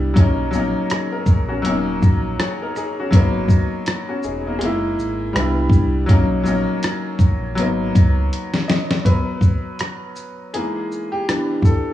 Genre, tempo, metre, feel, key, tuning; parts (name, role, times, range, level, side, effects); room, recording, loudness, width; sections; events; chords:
lo-fi hip hop; 81 BPM; 4/4; swing 57% on 16ths; G# minor; A4 = 441 Hz
bright upright piano; accompaniment; 0.0-11.9 s; E3 to D#5; -21 LUFS; left 2 dB; cassette tape
sub bass with octave; bass; 0.0-8.3 s; D#1 to C#2; -23 LUFS; equal
dusty soul sampler-style drum kit; drums; 0.2-11.8 s; hi-hat, kick drum, rim click, shaker, snare drum; -16 LUFS; equal
light reverb; cassette tape, small room ambience; -16 LUFS; side -13 dB against mid
0.0-9.1 A section; 9.1-11.9 B section
drum fill 8.3-9.1; break 9.1-11.9; upright piano solo 9.1-11.9
0.2 Bmaj7; 1.6 D#m7; 3.1 G#m9; 4.6 F#13; 5.4 Cmaj7; 6.1 Bmaj7; 7.6 G#m7; 9.1 F#add11; 10.5 Emaj7#11; 11.3 Em7